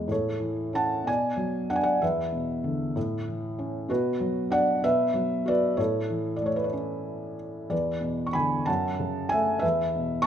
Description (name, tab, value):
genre	classical, lyrical solo piano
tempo	63 BPM (dotted quarters)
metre	6/8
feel	rubato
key	unclear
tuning	A4 = 440 Hz
part	felt-muted upright piano	solo	0.0-10.3 s	E1 to C#6	-24 LUFS	equal	none
room	moderate recital hall reverb, RT60 1.6 s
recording	minimal, uncompressed stereo recording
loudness	-24 LUFS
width	side -9 dB against mid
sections	0.1-10.3 A section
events	none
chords	0.1 A; 1.1 Bm; 2.0 E5; 3.0 A; 3.9 Bm; 4.8 Esus2/B; 5.8 A; 7.7 E5; 8.7 F#m; 9.6 E5